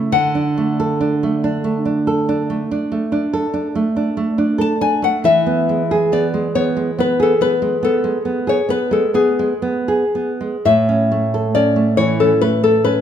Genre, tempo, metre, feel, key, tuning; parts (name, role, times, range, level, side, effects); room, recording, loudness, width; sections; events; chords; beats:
romantic duo for nylon-string guitar and classical guitar; 46 BPM (dotted quarters); 12/8; rubato; A4 = 442 Hz
nylon-string guitar; melody; 0.0-13.0 s; G#4 to A5; -17 LUFS; left 5 dB
nylon-string guitar; accompaniment; 0.0-13.0 s; A2 to A4; -17 LUFS; right 3 dB
moderate recital hall reverb, RT60 1.5 s; minimal, uncompressed stereo recording; -15 LUFS; side -9 dB against mid
0.0-13.0 A section
0.1 D; 5.2 E; 10.6 A
| 0.12 1.43 2.69 3.95 | 5.24 6.55 7.83 9.13 | 10.64 11.97